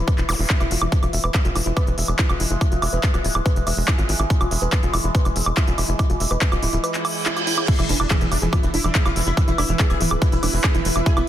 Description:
psychedelic trance; 142 BPM; 4/4; straight; E major; A4 = 444 Hz
overtone-sweeping drone; sustained chords; 0.0-11.3 s; E3 to E4; -30 LUFS; equal; chorus, built-in reverb, phaser, sidechain pumping
tight sequencer bass; bass; 0.0-11.2 s; D1 to G#1; -23 LUFS; equal
woody wave-folded pluck; riff; 0.1-11.2 s; D4 to E5; -29 LUFS; moving between left 3 dB and right 4 dB; chorus, auto-pan, sidechain pumping, tape echo
big-room dance drum kit; drums; 0.1-11.3 s; crash cymbal, handclaps, hi-hat, woodblock; -24 LUFS; right 1 dB
electronic kick drum; drums; 0.1-11.1 s; -20 LUFS; equal
zap, reverse cymbal and impact; sound effects; 0.3-0.4, 7.0-9.4 s; -29 LUFS; right 2 dB
metallic wobble bass; second line; 1.8-3.0, 8.5-9.8 s; E3 to E4; -40 LUFS; right 4 dB
dense compressed supersaw; melody; 7.7-11.2 s; E3 to G#4; -27 LUFS; right 1 dB; phaser, sidechain pumping, dub echo
granular cloud pad; texture; 9.2-11.3 s; E4 to E5; -32 LUFS; equal; built-in reverb, sidechain pumping
light reverb; dense, heavily limited modern master; -18 LUFS; side -12 dB against mid
0.0-7.7 A section; 7.7-11.3 B section
reverse cymbal 7.0-7.7; drop 7.7-11.3; impact 7.7-9.4
0.0 E5

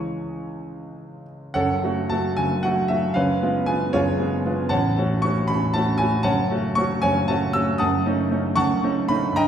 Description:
classical, romantic character piece for solo piano; 77 BPM (dotted quarters); 6/8; uneven beats, rubato; F# minor; A4 = 442 Hz
clear concert grand piano; solo; 0.0-9.5 s; A0 to E6; -20 LUFS; equal
wet recital hall reverb, RT60 1.4 s; heard from further back in the room; -19 LUFS; side -9 dB against mid
0.0-1.6 A section; 1.6-9.5 B section
0.0 C#m; 1.6 F#m; 3.2 C#7/F#; 4.7 F#m/A; 6.2 F#m; 7.8 D#m7b5/F#

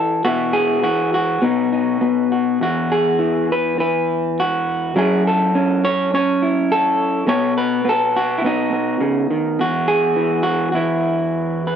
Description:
folk, solo fingerstyle acoustic guitar; 103 BPM; 4/4; straight; A4 = 440 Hz
electric guitar through a small old amp; solo; 0.0-11.8 s; E2 to C#5; -16 LUFS; equal
moderate studio reverb, RT60 0.6 s; dark, warm production; -16 LUFS; side -8 dB against mid
0.0-11.8 A section
0.2 Bsus4; 1.4 B; 2.6 N.C.; 5.0 F#m7; 7.3 B7; 9.6 Eadd9

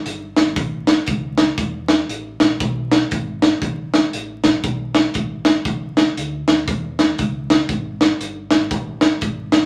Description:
uptempo gospel; 118 BPM; 4/4; swing 61% on 8ths; A4 = 438 Hz
deep dub fingered electric bass; bass; 0.1-9.6 s; F#1 to E2; -33 LUFS; equal
crisp fusion drum kit; drums; 0.1-9.6 s; hi-hat, kick drum, snare drum; -19 LUFS; equal
moderate studio reverb, RT60 0.5 s; vinyl crackle; -19 LUFS; mono
0.0-9.7 A section

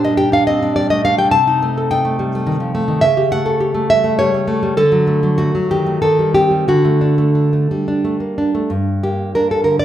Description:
romantic piece for solo classical guitar; 87-109 BPM; 3/4; rubato; G minor; A4 = 440 Hz
nylon-string guitar; solo; 0.0-9.8 s; G2 to A5; -13 LUFS; equal
moderate recital hall reverb, RT60 1.3 s; recorded in a church or concert hall; -13 LUFS; side -11 dB against mid
0.0-8.7 A section; 8.7-9.8 B section
0.0 Gm/Bb; 1.3 Am7b5/C; 3.0 A7/C#; 4.8 D; 6.0 Cm/Eb; 6.7 D; 8.7 Gm

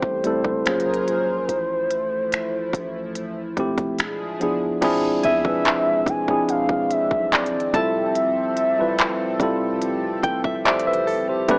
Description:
contemporary R&B; 72 BPM; 4/4; straight; A4 = 440 Hz
gliding portamento lead; melody; 0.0-9.8 s; C5 to G#5; -26 LUFS; equal; chorus
tine electric piano; accompaniment; 0.0-11.6 s; F3 to E5; -25 LUFS; equal
chorused pulse-width pad; sustained chords; 0.0-11.6 s; F3 to A#4; -33 LUFS; equal; sidechain pumping
warm 808-style bass; bass; 0.0-11.6 s; D1 to E2; -41 LUFS; equal
trap drum kit; drums; 0.0-11.6 s; crash cymbal, finger snaps, handclaps, hi-hat, kick drum; -26 LUFS; equal
steel-string zither; texture; 5.2-9.2 s; G#5 to A5; -33 LUFS; equal; analog delay
direct-recorded clean electric guitar; arpeggios; 10.2-11.6 s; G4 to G5; -29 LUFS; equal; analog delay
light reverb, digital ambience; dry, gritty hardware recording, small speaker sound; -22 LUFS; mono
0.0-4.8 A section; 4.8-11.6 B section
tine electric piano fill 10.2-11.5
0.0 Am7; 0.7 F#maj9; 1.5 Fmaj9/A; 4.0 E7b9; 4.8 E7b9b13; 7.7 Fmaj9

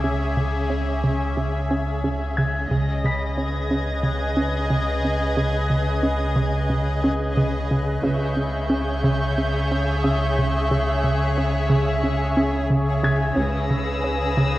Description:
cinematic, suspense film score; 90 BPM; 4/4; straight; C# minor; A4 = 441 Hz
muted studio violin section; second line; 0.0-14.6 s; G#4 to E5; -29 LUFS; left 1 dB
evolving wavetable pad; sustained chords; 0.0-14.6 s; C#4 to E5; -30 LUFS; left 1 dB; phaser, built-in reverb
plucky analog bass; riff; 0.0-14.6 s; C#3 to C#4; -24 LUFS; right 1 dB
muted studio cello section; bass; 0.0-14.6 s; C#3; -28 LUFS; right 1 dB
warm sub bass; drone; 0.0-14.6 s; C#2; -26 LUFS; equal
muted studio violin section; texture; 0.0-14.6 s; C#6 to A#6; -32 LUFS; left 1 dB
warm grand piano; texture; 0.0-14.6 s; E5 to B6; -32 LUFS; left 2 dB
muted studio double bass section; bass; 2.7-3.3, 8.0-8.7, 13.4-14.0 s; C#2; -30 LUFS; right 1 dB
moderate concert hall reverb, RT60 2.1 s; worn, warbling old tape, cassette tape, warbly pitch drift; -20 LUFS; side -16 dB against mid
0.0-14.6 A section
0.0 C#m; 2.7 G#m/C#; 8.0 C#m; 13.4 G#m/C#

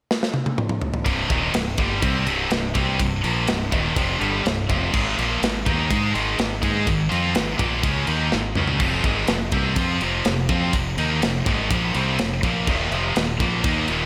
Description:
heavy metal; 124 BPM; 4/4; straight; C phrygian; A4 = 440 Hz
tight metal drum kit; drums; 0.1-14.0 s; crash cymbal, kick drum, ride cymbal, snare drum, toms; -27 LUFS; equal
scooped high-gain guitar; riff; 1.0-14.1 s; C2 to Ab4; -24 LUFS; equal; distortion
growling fingered electric bass; bass; 1.1-14.1 s; C1 to Ab2; -29 LUFS; equal; overdrive
moderate lush hall reverb, RT60 2.4 s; big arena sound; -22 LUFS; mono
0.0-1.1 A section; 1.1-14.1 B section
drum fill 0.1-1.1, 8.3-8.8
0.0 N.C.; 1.1 Cm; 4.9 Ab5; 8.8 F5; 12.7 Eb5

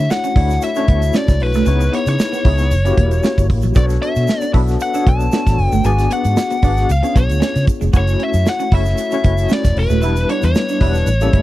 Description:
polished 1980s jazz-funk pop; 115 BPM; 4/4; swing 54% on 16ths; A4 = 437 Hz
biting lead guitar; melody; 0.0-11.4 s; B4 to A5; -21 LUFS; left 2 dB; overdrive
overdriven tine electric piano; accompaniment; 0.0-11.4 s; G3 to E5; -22 LUFS; left 4 dB; fast tremolo, analog chorus
vintage muted fingered electric bass; bass; 0.0-11.4 s; Eb1 to C#3; -16 LUFS; equal
semi-hollow electric guitar; riff; 0.1-11.4 s; F#3 to F#4; -24 LUFS; right 4 dB; analog chorus
modern studio drum kit; drums; 0.1-11.4 s; hi-hat, kick drum, snare drum; -16 LUFS; equal
egg shaker; percussion; 0.1-11.3 s; -39 LUFS; right 10 dB
little or no reverb; dry, close 1970s-style studio recording; -13 LUFS; side -16 dB against mid
0.0-11.4 A section
tine electric piano fill 11.1-11.4
0.0 Dmaj9; 1.7 C#m9; 2.7 F#7b9; 3.8 Bm9; 5.8 G#m7b5; 6.9 C#7b9; 7.9 F#m7; 10.0 Em7

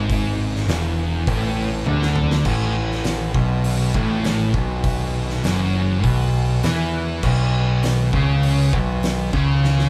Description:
stoner and doom metal; 101 BPM; 4/4; straight; A4 = 440 Hz
thick fuzz guitar; riff; 0.0-9.9 s; E2 to E3; -24 LUFS; equal; distortion
thick fuzz guitar; riff; 0.0-9.9 s; E2 to E3; -26 LUFS; equal; distortion
growling picked electric bass; bass; 0.0-9.9 s; E1 to E2; -26 LUFS; equal; overdrive
oversized low-tuned drum kit; drums; 0.1-9.9 s; crash cymbal, hi-hat, kick drum, snare drum, toms; -28 LUFS; equal
wet studio reverb, RT60 0.5 s; band playing live in one room; -20 LUFS; mono
0.0-9.9 A section
drum fill 1.9-2.5, 9.6
0.0 E7; 2.5 A5; 7.2 B5

